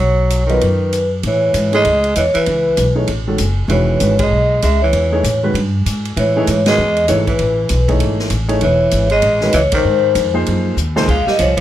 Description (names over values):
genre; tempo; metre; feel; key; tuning
modal jazz; 195 BPM; 4/4; swing 61% on 8ths; A lydian; A4 = 440 Hz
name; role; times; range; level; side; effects
vibraphone with medium mallets; melody; 0.0-11.6 s; B4 to F5; -16 LUFS; left 1 dB; none
growling tenor saxophone; second line; 0.0-11.6 s; D#3 to Ab3; -20 LUFS; right 3 dB; none
upright bass; bass; 0.0-11.6 s; E1 to A2; -17 LUFS; equal; none
swinging big-band drum kit; drums; 0.3-11.6 s; crash cymbal, hi-hat, kick drum, ride cymbal, snare drum; -24 LUFS; equal; none
warm concert grand piano; accompaniment; 0.5-11.1 s; C#2 to D#5; -19 LUFS; right 1 dB; none
room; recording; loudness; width
light reverb; none; -12 LUFS; side -12 dB against mid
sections
0.0-1.2 A section; 1.2-11.1 B section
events
band accent 4.2, 6.6, 9.7; drum fill 10.8-11.1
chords
0.0 Badd9; 1.2 Amaj9; 9.9 G#7; 11.1 Dbmaj7